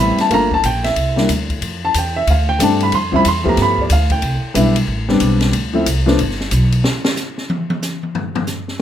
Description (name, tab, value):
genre	jazz, small-group swing and bop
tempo	184 BPM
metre	4/4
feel	swing 63% on 8ths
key	unclear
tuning	A4 = 440 Hz
part	dark baby grand piano	accompaniment	0.0-6.2 s	F3 to C6	-16 LUFS	equal	none
part	upright bass	bass	0.0-6.8 s	G1 to G2	-18 LUFS	equal	none
part	open jazz drum kit	drums	0.2-8.7 s	hi-hat, kick drum, ride cymbal, snare drum, toms	-21 LUFS	left 2 dB	none
room	moderate club reverb, RT60 0.8 s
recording	none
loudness	-14 LUFS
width	side -10 dB against mid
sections	0.0-6.8 A section; 6.8-8.8 A section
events	drum solo 6.8-8.8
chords	0.3 Gm7; 1.0 C9; 1.6 F69; 2.9 Fmaj9#11; 3.6 G9; 4.2 Cmaj9; 4.9 Am9; 5.5 Dm9; 6.2 G; 6.8 N.C.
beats	| 0.31 0.64 0.97 1.29 | 1.62 1.95 2.27 2.60 | 2.93 3.25 3.58 3.91 | 4.23 4.56 4.88 5.21 | 5.54 5.87 6.19 6.52 | 6.84 7.17 7.50 7.82 | 8.15 8.48